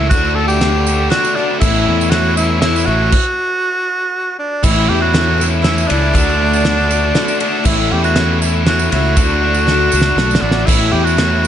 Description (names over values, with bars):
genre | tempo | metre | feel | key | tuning
folk rock and heartland rock | 119 BPM | 3/4 | straight | D major | A4 = 439 Hz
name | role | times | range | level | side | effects
breathy tenor saxophone | melody | 0.0-11.5 s | D4 to A4 | -17 LUFS | right 1 dB | analog delay
picked steel-string acoustic guitar | accompaniment | 0.0-11.5 s | A2 to F#4 | -21 LUFS | left 6 dB | none
biting overdriven guitar | riff | 0.0-11.5 s | A2 to F#4 | -19 LUFS | right 1 dB | none
fingered electric bass | bass | 0.0-11.5 s | A1 to E2 | -17 LUFS | equal | none
damped 70s drum kit | drums | 0.1-11.3 s | crash cymbal, kick drum, ride cymbal, snare drum | -18 LUFS | right 1 dB | none
tambourine | percussion | 0.1-11.5 s | none | -28 LUFS | right 10 dB | none
room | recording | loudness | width
light reverb | nothing above 10.6 kHz | -12 LUFS | side -10 dB against mid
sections
0.0-4.6 A section; 4.6-11.5 A section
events
stop 3.1-4.6; drum fill 9.7-10.7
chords
0.1 D; 1.6 A; 3.1 N.C.; 4.6 A; 6.2 D; 7.7 A; 9.2 D; 10.7 A